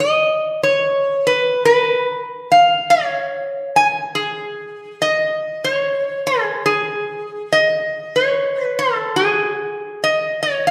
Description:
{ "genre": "hawaiian", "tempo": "96 BPM", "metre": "4/4", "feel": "swing 62% on 8ths", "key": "Db major", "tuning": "A4 = 440 Hz", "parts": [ { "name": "metal-body resonator slide guitar", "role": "solo", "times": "0.0-10.7 s", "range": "Ab4 to Ab5", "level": "-18 LUFS", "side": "equal", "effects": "none" } ], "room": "wet recital hall reverb, RT60 1.6 s", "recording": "recorded in a church or concert hall", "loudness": "-18 LUFS", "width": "mono", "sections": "0.0-10.7 A section", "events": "none", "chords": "none" }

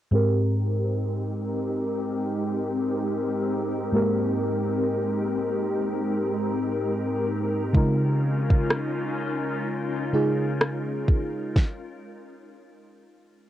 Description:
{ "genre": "contemporary R&B", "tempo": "63 BPM", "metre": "4/4", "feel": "swing 58% on 16ths", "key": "Ab major", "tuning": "A4 = 440 Hz", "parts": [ { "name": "mellow FM electric piano", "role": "accompaniment", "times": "0.1-11.6 s", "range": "Ab2 to Bb4", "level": "-26 LUFS", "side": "equal", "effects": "chorus, phaser, low-pass filter" }, { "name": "glassy FM pad", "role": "sustained chords", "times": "0.5-11.5 s", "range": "Ab3 to Bb4", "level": "-28 LUFS", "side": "left 1 dB", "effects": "ensemble chorus, built-in reverb, low-pass filter" }, { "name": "smooth R&B drum kit", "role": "drums", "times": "7.7-11.8 s", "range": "kick drum, rim click, snare drum", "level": "-20 LUFS", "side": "equal", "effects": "cassette tape" }, { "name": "reverse cymbal", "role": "sound effects", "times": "13.5 s", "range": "none", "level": "-66 LUFS", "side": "right 3 dB", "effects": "none" } ], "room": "moderate booth ambience, RT60 0.2 s", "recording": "home recording on cassette", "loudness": "-23 LUFS", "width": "side -12 dB against mid", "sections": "0.1-13.5 A section", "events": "filter sweep 0.1-13.5; stop 11.6-13.5", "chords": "0.1 Abmaj9; 7.8 Db69; 11.6 N.C." }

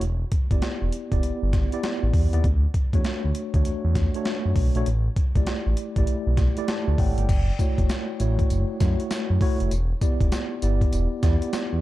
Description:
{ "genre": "R&B, new jack swing", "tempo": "99 BPM", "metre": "4/4", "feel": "swing 63% on 16ths", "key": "E dorian", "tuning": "A4 = 440 Hz", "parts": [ { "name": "mellow tine electric piano", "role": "accompaniment", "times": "0.0-11.8 s", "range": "A3 to A5", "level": "-29 LUFS", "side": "equal", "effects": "medium stereo tremolo" }, { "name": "smooth gliding synth bass", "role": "bass", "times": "0.0-11.8 s", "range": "E1 to F#2", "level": "-23 LUFS", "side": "equal", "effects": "none" }, { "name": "breakbeat sampler-style drum kit", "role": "drums", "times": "0.0-11.7 s", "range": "crash cymbal, hi-hat, kick drum, snare drum, tambourine", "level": "-24 LUFS", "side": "equal", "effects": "none" } ], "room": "digital ambience", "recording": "dark, warm production", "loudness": "-21 LUFS", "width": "side -16 dB against mid", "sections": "0.0-7.3 A section; 7.3-11.8 B section", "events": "tine electric piano fill 6.4-7.3", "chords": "0.0 Em7; 2.4 Dmaj7; 4.9 A7sus4; 7.3 F#m7; 9.7 Em7" }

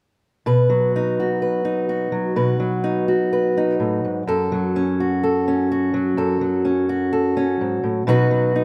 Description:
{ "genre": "folk", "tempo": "63 BPM", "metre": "4/4", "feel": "straight", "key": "B mixolydian", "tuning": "A4 = 440 Hz", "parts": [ { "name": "fingerpicked acoustic archtop guitar", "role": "accompaniment", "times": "0.5-8.6 s", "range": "F#2 to B4", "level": "-20 LUFS", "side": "equal", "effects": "none" } ], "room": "light reverb", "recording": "close, detailed microphones", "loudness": "-20 LUFS", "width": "mono", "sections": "0.5-8.6 A section", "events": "none", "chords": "0.5 B; 4.3 F#m; 8.1 B" }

